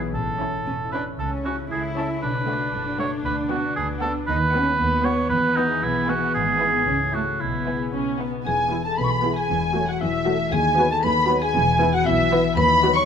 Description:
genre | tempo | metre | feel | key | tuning
cinematic, playful, whimsical film cue | 116 BPM | 2/4 | straight | A major, E major from 4.3 s | A4 = 441 Hz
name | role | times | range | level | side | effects
concert harp | arpeggios | 0.0-13.1 s | G#2 to B4 | -28 LUFS | left 11 dB | none
muted studio cello section | bass | 0.0-13.0 s | D#2 to E4 | -29 LUFS | right 1 dB | none
muted studio double bass section | bass | 0.0-13.0 s | E1 to E2 | -29 LUFS | right 3 dB | none
mellow oboe | second line | 0.1-7.9 s | D#4 to C#5 | -24 LUFS | right 3 dB | none
muted studio violin section | melody | 0.4-13.1 s | C#5 to C#6 | -29 LUFS | left 4 dB | none
muted studio violin section | second line | 0.4-13.1 s | D#4 to C#6 | -28 LUFS | right 2 dB | none
muted studio viola section | accompaniment | 0.4-13.0 s | A3 to F#4 | -30 LUFS | right 1 dB | none
marimba with hard mallets | melody | 8.5-13.1 s | E4 to C#5 | -28 LUFS | left 6 dB | none
mellow silver concert flute | second line | 8.5-13.0 s | E5 to C#6 | -23 LUFS | equal | none
warm French horn section | sustained chords | 8.7-12.9 s | E3 to B4 | -30 LUFS | left 1 dB | none
room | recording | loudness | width
light reverb | close, detailed microphones | -19 LUFS | side -7 dB against mid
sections
0.1-8.5 A section; 8.5-13.1 B section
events
none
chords
0.1 A; 1.2 A/C#; 2.2 Bm7; 3.2 Bm/D; 4.3 B/D#; 5.3 E; 6.3 E/G#; 6.9 A/C#; 7.4 E/B; 7.9 B; 8.5 E; 9.5 F#m7/E; 10.5 B/D#; 11.6 E5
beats
| 0.14 0.67 | 1.19 1.71 | 2.22 2.74 | 3.25 3.76 | 4.27 4.79 | 5.30 5.82 | 6.34 6.87 | 7.40 7.93 | 8.46 8.98 | 9.50 10.02 | 10.53 11.04 | 11.55 12.07 | 12.58

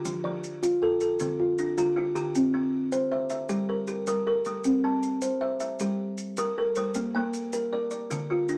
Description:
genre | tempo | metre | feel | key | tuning
southern african traditional, mbira-style interlocking cycle | 104 BPM (dotted quarters) | 12/8 | straight | C mixolydian | A4 = 442 Hz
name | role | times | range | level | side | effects
buzzing kalimba | arpeggios | 0.0-8.6 s | D3 to E5 | -34 LUFS | equal | none
kalimba | arpeggios | 0.0-8.6 s | D3 to A5 | -29 LUFS | equal | none
maracas | percussion | 0.1-8.6 s | none | -44 LUFS | equal | none
room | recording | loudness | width
light reverb | none | -28 LUFS | mono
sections
0.0-8.6 A section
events
none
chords
0.0 F; 1.2 Dm; 2.3 C; 7.0 Bb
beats
| 0.05 0.62 1.20 1.77 | 2.35 2.92 3.50 4.08 | 4.65 5.22 5.80 6.38 | 6.95 7.53 8.10

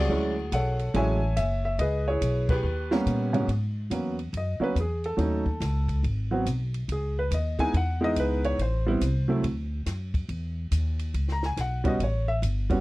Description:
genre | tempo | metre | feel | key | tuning
jazz piano trio | 141 BPM | 4/4 | swing 65% on 8ths | G# minor from 3.5 s | A4 = 441 Hz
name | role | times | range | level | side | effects
warm concert grand piano | melody | 0.0-12.8 s | G#2 to A#5 | -27 LUFS | right 1 dB | none
upright bass | bass | 0.0-12.8 s | F#1 to A#2 | -27 LUFS | equal | none
compact cocktail drum kit | drums | 0.5-12.8 s | crash cymbal, hi-hat, kick drum, ride cymbal, snare drum | -32 LUFS | equal | none
room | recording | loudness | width
little or no reverb | dry, close 1970s-style studio recording | -24 LUFS | side -19 dB against mid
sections
0.0-3.5 A section; 3.5-12.8 B section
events
band accent 2.4; grand piano solo 3.5-12.8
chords
0.1 Dmaj9#11; 1.8 C#m7; 2.6 D#7b13; 3.5 G#m11; 5.2 D#m7b5; 6.0 G#m7; 6.9 C#m9; 8.6 Am; 9.4 D; 10.3 E5; 12.0 A7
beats
| 0.10 0.52 0.94 1.36 | 1.79 2.21 2.64 3.06 | 3.48 3.91 4.33 4.76 | 5.18 5.61 6.03 6.46 | 6.88 7.31 7.74 8.16 | 8.59 9.01 9.44 9.87 | 10.29 10.72 11.14 11.57 | 11.99 12.42

